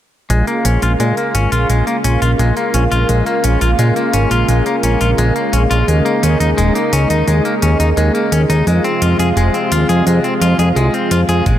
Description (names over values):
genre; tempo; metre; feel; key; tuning
synthwave; 86 BPM; 4/4; straight; Bb minor; A4 = 440 Hz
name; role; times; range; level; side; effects
lush unison pad; sustained chords; 0.3-11.6 s; C3 to F4; -17 LUFS; equal; chorus, sidechain pumping
clean electric guitar; arpeggios; 0.3-11.6 s; Ab3 to Ab4; -19 LUFS; left 2 dB; vintage 12-bit sampler grit, low-pass filter, tape echo
fat analog bass; bass; 0.3-11.6 s; Eb1 to Bb2; -14 LUFS; equal; none
electronic hi-hat; drums; 0.3-11.6 s; none; -25 LUFS; equal; small room ambience
electronic kick drum; drums; 11.5-11.6 s; none; -13 LUFS; equal; small room ambience
room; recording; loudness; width
moderate lush hall reverb, RT60 1.9 s, digital ambience; none; -12 LUFS; side -11 dB against mid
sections
0.3-11.6 A section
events
filter sweep on analog synth bass 0.3-11.6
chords
0.3 Bbm7; 5.9 Eb7sus4; 8.7 Fm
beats
| 0.30 1.00 1.70 2.39 | 3.09 3.79 4.49 5.18 | 5.88 6.58 7.28 7.97 | 8.67 9.37 10.07 10.77 | 11.46